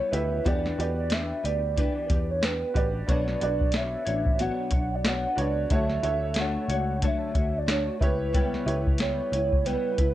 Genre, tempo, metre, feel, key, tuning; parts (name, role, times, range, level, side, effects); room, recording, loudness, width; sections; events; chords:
indie pop, bedroom pop; 91 BPM; 4/4; swing 60% on 16ths; B minor; A4 = 440 Hz
warbly nostalgic lead; melody; 0.0-10.1 s; B4 to F#5; -30 LUFS; right 2 dB; wide subtle chorus
clear upright piano; accompaniment; 0.0-10.1 s; D4 to E5; -35 LUFS; right 3 dB
nylon-string guitar; accompaniment; 0.0-10.1 s; B2 to C#5; -32 LUFS; left 2 dB; ensemble chorus, vibrato effect
vintage muted picked electric bass; bass; 0.1-10.1 s; A1 to E2; -30 LUFS; equal
soft vintage rhythm box; drums; 0.1-10.1 s; hi-hat, kick drum, snare drum; -27 LUFS; equal
light reverb; -24 LUFS; side -14 dB against mid
0.0-10.1 A section
0.5 Em7; 3.1 Bmadd9; 5.7 Dmaj7; 8.0 C#m7b5